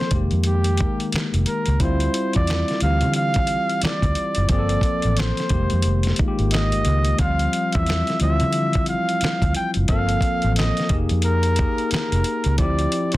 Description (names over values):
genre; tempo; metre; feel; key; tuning
R&B, neo-soul; 89 BPM; 4/4; swing 61% on 16ths; D minor; A4 = 440 Hz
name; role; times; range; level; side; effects
clear flugelhorn; melody; 0.0-13.2 s; G4 to G5; -25 LUFS; right 1 dB; none
tine electric piano; accompaniment; 0.0-13.2 s; Eb3 to Bb4; -25 LUFS; left 2 dB; none
dusty soul sampler-style drum kit; drums; 0.0-13.2 s; handclaps, hi-hat, kick drum, snare drum; -24 LUFS; equal; none
vintage muted fingered electric bass; bass; 0.1-13.2 s; F1 to D3; -21 LUFS; equal; none
room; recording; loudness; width
light reverb; dense, heavily limited modern master; -18 LUFS; side -17 dB against mid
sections
0.0-13.2 A section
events
none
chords
0.1 Fm11; 1.8 Dm11; 4.5 Gm11; 5.5 Fm11; 7.2 Dm11; 9.9 Gm11; 10.9 Fm11; 12.6 Dm11